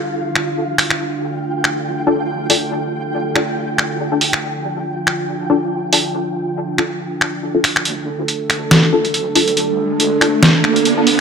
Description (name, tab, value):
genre	deep dubstep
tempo	140 BPM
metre	4/4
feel	swing 56% on 16ths, half-time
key	D minor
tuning	A4 = 441 Hz
part	dark analog pad	sustained chords	0.0-11.2 s	D4 to A4	-21 LUFS	right 2 dB	chorus
part	flickering grainy texture	texture	0.0-7.9 s	F4 to G5	-25 LUFS	right 2 dB	built-in reverb
part	trip hop sampler-style drum kit	drums	0.4-11.2 s	finger snaps, hi-hat, snare drum	-15 LUFS	equal	none
part	filtered dub chord stab	stabs	2.1-11.1 s	D4 to A4	-21 LUFS	left 4 dB	ensemble chorus, dub echo
part	deep soft wobble bass	bass	7.9-11.2 s	D2	-30 LUFS	left 1 dB	none
part	riser	sound effects	9.3-11.2 s	none	-20 LUFS	right 5 dB	none
room	moderate lush hall reverb, RT60 2.1 s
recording	none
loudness	-14 LUFS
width	side -6 dB against mid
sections	0.0-7.9 A section; 7.9-11.2 B section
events	filter sweep on analog synth pad 0.0-7.9; build-up 7.9-11.2; filter sweep on synth stab 7.9-11.2; riser 9.3-11.2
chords	0.0 Dm; 7.9 D5